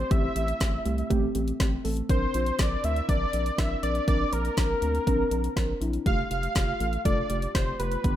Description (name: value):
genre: synth-pop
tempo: 121 BPM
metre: 4/4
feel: straight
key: unclear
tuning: A4 = 440 Hz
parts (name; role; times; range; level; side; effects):
- wide unison lead; melody; 0.0-8.2 s; Bb4 to F5; -30 LUFS; equal; digital delay
- muted felt-like synth keys; accompaniment; 0.0-8.2 s; A3 to Bb4; -31 LUFS; equal; chorus
- round analog bass; bass; 0.0-8.2 s; F1 to D2; -30 LUFS; equal; none
- deep house drum kit; drums; 0.1-8.2 s; hi-hat, kick drum, snare drum; -27 LUFS; equal; none
room: light reverb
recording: none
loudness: -24 LUFS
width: side -12 dB against mid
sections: 0.0-8.2 A section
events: none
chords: 0.0 Am7; 2.1 Bbadd9; 6.1 Fadd9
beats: | 0.11 0.61 1.10 1.60 | 2.09 2.59 3.08 3.58 | 4.08 4.57 5.07 5.57 | 6.06 6.56 7.05 7.55 | 8.04